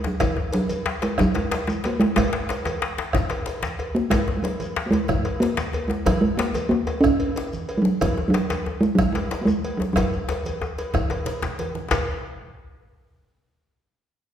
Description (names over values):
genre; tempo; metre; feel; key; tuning
west african traditional, West African drum ensemble; 123 BPM (dotted quarters); 12/8; straight; F# major pentatonic; A4 = 442 Hz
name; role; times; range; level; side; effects
talking drum; melody; 0.0-11.5 s; F#3 to C#4; -22 LUFS; right 1 dB; none
bombo; percussion; 0.0-12.1 s; none; -30 LUFS; right 1 dB; none
djembe; percussion; 0.0-12.1 s; none; -32 LUFS; left 3 dB; none
djembe; percussion; 0.0-12.1 s; none; -29 LUFS; left 3 dB; none
congas; percussion; 0.1-12.1 s; none; -33 LUFS; right 2 dB; none
cowbell; percussion; 0.2-12.1 s; none; -31 LUFS; equal; none
shekere; percussion; 0.2-12.1 s; none; -39 LUFS; left 2 dB; none
room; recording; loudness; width
wet recital hall reverb, RT60 1.5 s; recorded in a church or concert hall; -21 LUFS; side -9 dB against mid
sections
0.0-11.9 A section; 11.9-13.9 B section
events
drum fill 10.0-11.9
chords
none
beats
| 0.21 0.70 1.19 1.67 | 2.16 2.65 3.14 3.62 | 4.11 4.60 5.09 5.58 | 6.06 6.55 7.04 7.53 | 8.02 8.50 8.99 9.48 | 9.97 10.45 10.94 11.43 | 11.92